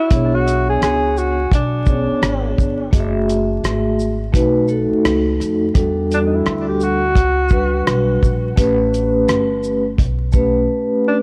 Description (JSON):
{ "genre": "hip hop, jazz-hop", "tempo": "85 BPM", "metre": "4/4", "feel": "swing 61% on 16ths", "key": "unclear", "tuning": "A4 = 440 Hz", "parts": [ { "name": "breathy alto saxophone", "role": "melody", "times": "0.0-11.2 s", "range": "D4 to G#4", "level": "-23 LUFS", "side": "equal", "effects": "tape echo" }, { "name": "vibraphone with soft mallets", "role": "accompaniment", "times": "0.1-11.2 s", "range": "G3 to E5", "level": "-20 LUFS", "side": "equal", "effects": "none" }, { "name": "upright bass", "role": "bass", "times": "0.1-10.7 s", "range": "F#1 to E#2", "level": "-24 LUFS", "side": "equal", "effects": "transformer saturation" }, { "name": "cloth-damped thuddy drum kit", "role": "drums", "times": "0.1-10.5 s", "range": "hi-hat, kick drum, rim click, shaker", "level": "-19 LUFS", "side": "equal", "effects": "none" } ], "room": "light reverb, small room reverb", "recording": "worn, warbling old tape, cassette tape, vinyl crackle, warbly pitch drift", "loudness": "-17 LUFS", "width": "mono", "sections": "0.1-11.2 A section", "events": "drums muted 10.7-11.2", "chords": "0.1 Bm69; 2.9 F#m9; 4.3 B7; 5.8 Em11; 8.6 A9", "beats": "| 0.10 0.81 1.52 2.22 | 2.93 3.63 4.34 5.04 | 5.75 6.46 7.16 7.87 | 8.57 9.28 9.99 10.69" }